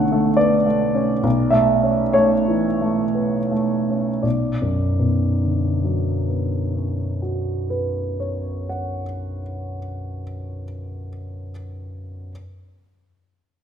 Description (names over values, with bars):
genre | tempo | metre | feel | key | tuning
classical, impressionist solo piano | 26-38 BPM (dotted quarters) | 9/8 | rubato | B minor | A4 = 440 Hz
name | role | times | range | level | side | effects
clear grand piano | solo | 0.0-12.3 s | B1 to F#5 | -19 LUFS | equal | none
room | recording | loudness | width
wet recital hall reverb, RT60 1.6 s | none | -18 LUFS | side -8 dB against mid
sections
0.0-4.2 A section; 4.2-10.1 B section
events
slowing down 0.0-4.2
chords
0.0 Bm9; 1.2 Aadd9/B; 4.2 Bmadd9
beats
0.39 2.15 | 4.24 6.20 8.14